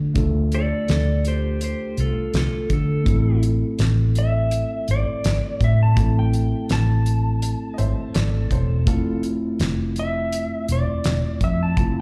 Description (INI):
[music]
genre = straight-eighth soul blues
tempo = 83 BPM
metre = 4/4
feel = straight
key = A minor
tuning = A4 = 440 Hz
[part]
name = mellow tine electric piano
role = accompaniment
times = 0.0-12.0 s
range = A3 to A4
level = -30 LUFS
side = equal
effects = slapback echo
[part]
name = vintage muted fingered electric bass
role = bass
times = 0.0-12.0 s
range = E1 to D3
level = -23 LUFS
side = equal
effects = none
[part]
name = damped 70s drum kit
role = drums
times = 0.2-11.9 s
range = hi-hat, kick drum, snare drum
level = -26 LUFS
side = equal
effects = none
[part]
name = clean lap steel guitar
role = melody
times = 0.5-12.0 s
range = F4 to A5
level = -30 LUFS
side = equal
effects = slapback echo
[part]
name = clear upright piano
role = second line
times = 7.7-9.2 s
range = F4 to E5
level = -37 LUFS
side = equal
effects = slapback echo
[sound]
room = small room ambience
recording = live gig heard through the venue's PA, club reverb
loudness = -21 LUFS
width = mono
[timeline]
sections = 0.0-12.0 A section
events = none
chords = 0.0 Dm; 3.1 Am; 8.9 Fmaj7